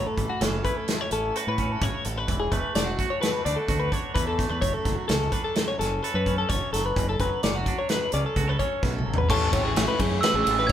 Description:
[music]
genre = math rock and midwest emo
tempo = 128 BPM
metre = 5/4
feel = straight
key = D major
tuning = A4 = 440 Hz
[part]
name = twangy electric guitar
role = accompaniment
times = 0.0-9.3 s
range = F#2 to A4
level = -32 LUFS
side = right 5 dB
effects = none
[part]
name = twelve-string electric guitar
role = arpeggios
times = 0.0-10.7 s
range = F#4 to D5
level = -28 LUFS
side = left 3 dB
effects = none
[part]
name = growling fingered electric bass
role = bass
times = 0.0-10.7 s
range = E1 to A2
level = -29 LUFS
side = right 1 dB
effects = overdrive
[part]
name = modern studio drum kit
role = drums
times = 0.2-10.7 s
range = crash cymbal, hi-hat, kick drum, ride cymbal, snare drum, toms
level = -27 LUFS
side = equal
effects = none
[part]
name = glockenspiel with soft plastic mallets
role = melody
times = 9.3-10.7 s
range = C#6 to G#6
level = -26 LUFS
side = right 3 dB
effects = none
[part]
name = overdriven electric guitar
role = riff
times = 9.3-10.7 s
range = A2 to E4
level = -30 LUFS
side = right 2 dB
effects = spring reverb
[sound]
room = moderate stone room reverb, RT60 1.2 s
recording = band playing live in one room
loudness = -23 LUFS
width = side -10 dB against mid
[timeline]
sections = 0.0-9.3 A section; 9.3-10.7 B section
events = drum fill 8.8-9.3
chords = 0.0 A69; 2.3 E9sus4; 4.6 Dmaj7/F#; 9.3 Amaj9

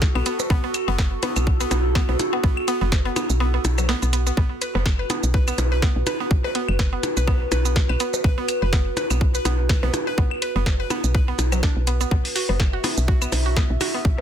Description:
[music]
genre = minimal techno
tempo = 124 BPM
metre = 4/4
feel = swing 56% on 16ths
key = unclear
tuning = A4 = 440 Hz
[part]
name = woody FM bass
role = bass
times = 0.0-14.1 s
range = F#1 to B1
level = -22 LUFS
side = equal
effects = tube saturation, sidechain pumping
[part]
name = booming analog drum machine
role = drums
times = 0.0-13.9 s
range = hi-hat, shaker, snare drum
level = -27 LUFS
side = right 2 dB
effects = none
[part]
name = electronic kick drum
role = drums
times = 0.0-14.2 s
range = none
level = -20 LUFS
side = equal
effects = none
[part]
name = warbly tape-like pad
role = texture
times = 0.0-14.2 s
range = F#4 to E5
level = -29 LUFS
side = right 2 dB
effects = chorus, built-in reverb, sidechain pumping
[part]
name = mallet-like synth pluck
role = riff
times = 0.2-14.0 s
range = F#3 to B4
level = -28 LUFS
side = equal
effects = chorus, sidechain pumping, tape echo
[part]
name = claves and percussion blips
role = percussion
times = 0.2-14.2 s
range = none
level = -29 LUFS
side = left 2 dB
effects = overdrive
[sound]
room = little or no reverb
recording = dense, heavily limited modern master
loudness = -19 LUFS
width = side -9 dB against mid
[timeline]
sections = 0.0-14.2 A section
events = kick drops out 3.4-4.4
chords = 0.0 B5

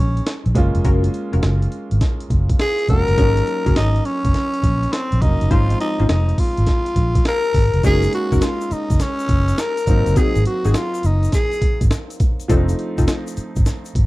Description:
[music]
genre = R&B, new jack swing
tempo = 103 BPM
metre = 4/4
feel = swing 66% on 16ths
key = unclear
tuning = A4 = 440 Hz
[part]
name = growling tenor saxophone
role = melody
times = 0.0-11.9 s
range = C4 to Bb4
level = -21 LUFS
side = left 1 dB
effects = slapback echo
[part]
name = warm grand piano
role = accompaniment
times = 0.0-14.1 s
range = F3 to C5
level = -27 LUFS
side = right 2 dB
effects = none
[part]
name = vintage muted fingered electric bass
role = bass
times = 0.0-14.1 s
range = F1 to Bb1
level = -18 LUFS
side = equal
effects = none
[part]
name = breakbeat sampler-style drum kit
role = drums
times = 0.2-14.1 s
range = hi-hat, kick drum, snare drum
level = -19 LUFS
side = equal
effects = vintage 12-bit sampler grit
[part]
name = funky polysynth comp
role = stabs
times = 0.8-13.1 s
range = C4 to C5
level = -24 LUFS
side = left 3 dB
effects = chorus
[part]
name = tube shaker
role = percussion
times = 7.8-13.9 s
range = none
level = -39 LUFS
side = left 8 dB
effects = none
[sound]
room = studio ambience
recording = dry, close 1970s-style studio recording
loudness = -16 LUFS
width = side -19 dB against mid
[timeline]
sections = 0.0-7.8 A section; 7.8-14.1 B section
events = none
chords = 0.0 Bbm11; 0.6 Gbmaj7; 3.2 Ab9sus4; 5.5 Dbmaj9; 7.8 Gb6; 9.9 Ab7; 12.5 F7

